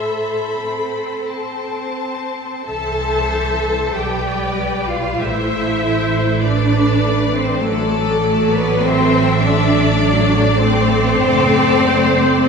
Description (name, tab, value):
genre	classical, slow romantic movement for string orchestra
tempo	41-51 BPM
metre	4/4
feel	rubato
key	C major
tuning	A4 = 440 Hz
part	clear symphonic violin section	melody	0.0-12.5 s	B4 to B5	-26 LUFS	left 4 dB	none
part	clear symphonic violin section	second line	0.0-12.5 s	A4 to A5	-22 LUFS	left 3 dB	none
part	rich symphonic viola section	accompaniment	0.0-12.5 s	E3 to D5	-21 LUFS	left 1 dB	none
part	clear symphonic cello section	bass	0.0-12.5 s	A2 to A4	-19 LUFS	right 1 dB	none
part	rich symphonic double bass section	bass	2.7-12.5 s	F#1 to C2	-20 LUFS	right 3 dB	none
room	wet church reverb, RT60 2.5 s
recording	recorded in a church or concert hall, small room ambience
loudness	-14 LUFS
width	side -5 dB against mid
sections	0.0-2.7 A section; 2.7-12.5 B section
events	none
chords	0.0 Am; 2.7 C; 5.2 Am; 7.6 D7/A